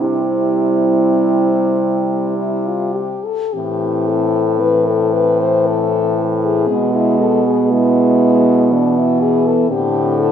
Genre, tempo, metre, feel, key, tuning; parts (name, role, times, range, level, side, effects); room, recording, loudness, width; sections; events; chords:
classical, lyrical piece for horn quartet; 48-61 BPM; 3/4; rubato; C major, A minor from 3.5 s; A4 = 440 Hz
warm French horn; melody; 0.0-10.3 s; C4 to C5; -18 LUFS; left 6 dB
dark French horn; second line; 0.0-10.3 s; B3 to E4; -17 LUFS; right 5 dB
warm French horn; accompaniment; 0.0-10.3 s; D3 to G#3; -21 LUFS; left 2 dB
clear French horn; bass; 0.0-10.3 s; A2 to C3; -21 LUFS; right 1 dB
wet recital hall reverb, RT60 1.6 s; minimal, uncompressed stereo recording; -13 LUFS; side -8 dB against mid
0.0-3.5 A section; 3.5-10.3 B section
0.0 C; 3.5 Am; 6.7 E/B; 9.7 Am